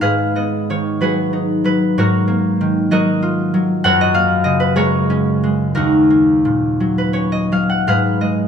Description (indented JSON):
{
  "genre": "classical, solo harp piece",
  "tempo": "56-66 BPM (dotted quarters)",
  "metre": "6/8",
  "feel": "rubato",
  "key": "G# dorian",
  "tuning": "A4 = 441 Hz",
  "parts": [
    { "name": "concert harp", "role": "solo", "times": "0.0-8.5 s", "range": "D#2 to F#5", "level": "-14 LUFS", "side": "equal", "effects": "none" }
  ],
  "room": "moderate recital hall reverb, RT60 1.6 s",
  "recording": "close, detailed microphones",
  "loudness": "-14 LUFS",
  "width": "side -7 dB against mid",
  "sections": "0.0-8.5 A section",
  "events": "none",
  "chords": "0.0 G#m7; 2.0 D#m9/G#; 3.8 F#add9; 5.8 D#m7; 7.9 G#m7",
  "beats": "| 0.02 1.01 | 1.97 2.90 | 3.83 4.77 | 5.77 6.82 | 7.88"
}